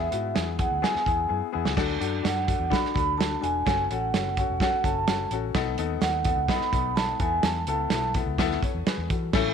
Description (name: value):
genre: uptempo 1960s-style soul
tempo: 127 BPM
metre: 4/4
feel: straight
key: unclear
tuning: A4 = 444 Hz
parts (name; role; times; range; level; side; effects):
- vibraphone with soft mallets; melody; 0.0-8.1 s; E5 to B5; -28 LUFS; right 4 dB; none
- warm upright piano; accompaniment; 0.0-9.5 s; A3 to C#5; -30 LUFS; left 13 dB; none
- vintage muted fingered electric bass; bass; 0.0-9.5 s; E1 to E3; -32 LUFS; left 1 dB; none
- warm soul drum kit; drums; 0.1-9.4 s; crash cymbal, hi-hat, kick drum, snare drum; -27 LUFS; right 2 dB; none
room: light reverb, studio ambience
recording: 1960s-style stereo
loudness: -23 LUFS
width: side -7 dB against mid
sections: 0.0-1.8 A section; 1.8-9.3 B section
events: drum fill 1.3-1.8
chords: 0.0 E; 1.8 D; 3.7 F#m; 5.6 B7; 7.2 Esus4